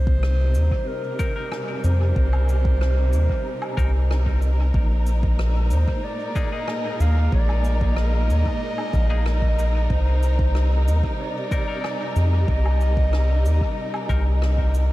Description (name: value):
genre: ambient dub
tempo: 93 BPM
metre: 4/4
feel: straight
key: C minor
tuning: A4 = 440 Hz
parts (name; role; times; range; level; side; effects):
- mellow clarinet; melody; 0.0-14.7 s; Bb4 to F5; -30 LUFS; equal; dub echo
- dark symphonic string section; sustained chords; 0.0-14.9 s; Bb2 to Bb4; -30 LUFS; right 1 dB; none
- round analog bass; bass; 0.0-14.9 s; Bb1 to F2; -19 LUFS; equal; none
- electronic kick drum; drums; 0.1-14.7 s; none; -25 LUFS; equal; small room ambience
- rim click, cabasa and woodblock; drums; 0.2-14.9 s; none; -36 LUFS; equal; small room ambience, dub echo
- semi-hollow electric guitar; stabs; 1.2-14.2 s; Bb3 to Bb4; -38 LUFS; left 4 dB; vintage 12-bit sampler grit, dub echo
room: light reverb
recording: none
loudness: -19 LUFS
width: side -17 dB against mid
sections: 0.0-14.9 A section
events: none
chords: 0.0 Cm7; 4.7 Bb7sus4; 9.9 Cm7